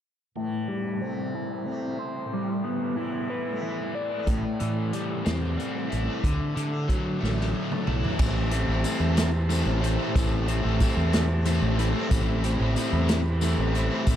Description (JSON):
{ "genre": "psychedelic rock", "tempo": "61 BPM (dotted quarters)", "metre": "6/8", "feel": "straight", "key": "A minor", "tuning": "A4 = 440 Hz", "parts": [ { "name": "biting overdriven guitar", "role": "riff", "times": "0.4-14.2 s", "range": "A2 to D5", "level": "-28 LUFS", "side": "left 1 dB", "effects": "harmonic tremolo, low-pass filter, dub echo" }, { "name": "tanpura", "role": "drone", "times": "0.4-14.2 s", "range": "A2 to A3", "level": "-37 LUFS", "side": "right 1 dB", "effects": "none" }, { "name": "growling fingered electric bass", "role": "bass", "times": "4.3-14.2 s", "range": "A1 to D3", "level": "-26 LUFS", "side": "equal", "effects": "overdrive" }, { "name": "vintage drum kit", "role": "drums", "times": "4.3-14.2 s", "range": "crash cymbal, hi-hat, kick drum, snare drum, toms", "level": "-28 LUFS", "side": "equal", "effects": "dub echo" }, { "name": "combo organ", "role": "sustained chords", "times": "8.2-14.2 s", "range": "G4 to B5", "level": "-35 LUFS", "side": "right 5 dB", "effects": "none" }, { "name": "tambourine", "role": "percussion", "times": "8.2-14.2 s", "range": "none", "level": "-44 LUFS", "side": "left 7 dB", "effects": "dub echo" } ], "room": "light reverb", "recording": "echo-heavy mix", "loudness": "-24 LUFS", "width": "side -10 dB against mid", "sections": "0.4-8.2 A section; 8.2-14.2 B section", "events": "filter sweep on overdriven electric guitar 0.4-8.2; drum fill 7.2-8.2", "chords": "0.4 Am7; 2.3 G6; 4.3 Am7; 6.3 Dadd9; 8.2 Am7", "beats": "| 0.36 1.34 | 2.33 3.31 | 4.29 5.27 | 6.25 7.24 | 8.21 9.20 | 10.17 11.15 | 12.13 13.11 | 14.08" }